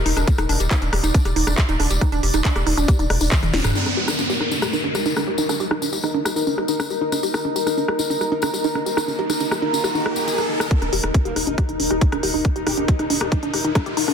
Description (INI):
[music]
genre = psychedelic trance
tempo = 138 BPM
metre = 4/4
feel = straight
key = Eb major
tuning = A4 = 440 Hz
[part]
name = pulsing gated texture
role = sustained chords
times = 0.0-14.1 s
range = Eb4 to D5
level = -27 LUFS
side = left 2 dB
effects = chorus, built-in reverb, sidechain pumping
[part]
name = round analog bass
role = bass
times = 0.0-3.7, 10.8-14.1 s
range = Eb1 to Fb1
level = -24 LUFS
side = equal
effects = none
[part]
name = woody wave-folded pluck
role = riff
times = 0.1-14.1 s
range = D4 to Eb5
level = -24 LUFS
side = moving between left 6 dB and right 7 dB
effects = chorus, auto-pan, sidechain pumping, tape echo
[part]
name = techno drum kit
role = drums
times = 0.1-14.1 s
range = handclaps, hi-hat, rim click, snare drum, toms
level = -26 LUFS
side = equal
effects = overdrive, low-pass filter on hats, low-pass filter on snare, low-pass filter on toms
[part]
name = tambourine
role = percussion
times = 0.2-10.7 s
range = none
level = -30 LUFS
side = left 6 dB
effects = none
[part]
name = electronic kick drum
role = drums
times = 0.3-3.4, 10.7-13.8 s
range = none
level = -17 LUFS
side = equal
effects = none
[part]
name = downlifter and riser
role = sound effects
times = 3.8-14.1 s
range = none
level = -28 LUFS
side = equal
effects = none
[part]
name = deep dark ambient pad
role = texture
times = 6.0-14.1 s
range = Eb4 to Bb5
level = -28 LUFS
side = right 1 dB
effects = chorus, built-in reverb, sidechain pumping
[part]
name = formant-sweep wobble bass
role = second line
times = 11.3-13.2 s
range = Bb3 to G4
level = -35 LUFS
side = right 4 dB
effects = chorus, cassette tape, sidechain pumping, high-pass filter, digital delay
[sound]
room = moderate plate reverb, RT60 1.8 s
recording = dense, heavily limited modern master, high-pass filter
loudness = -18 LUFS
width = side -7 dB against mid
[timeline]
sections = 0.0-3.8 A section; 3.8-10.7 B section; 10.7-14.1 C section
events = drum fill 3.3-3.8; band accent 3.5; filter sweep on synth texture 3.8-10.7; riser 8.3-10.7, 10.7-14.1; build-up 10.7-14.1; filter sweep on synth arpeggio sound 10.7-14.1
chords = 0.0 Eb5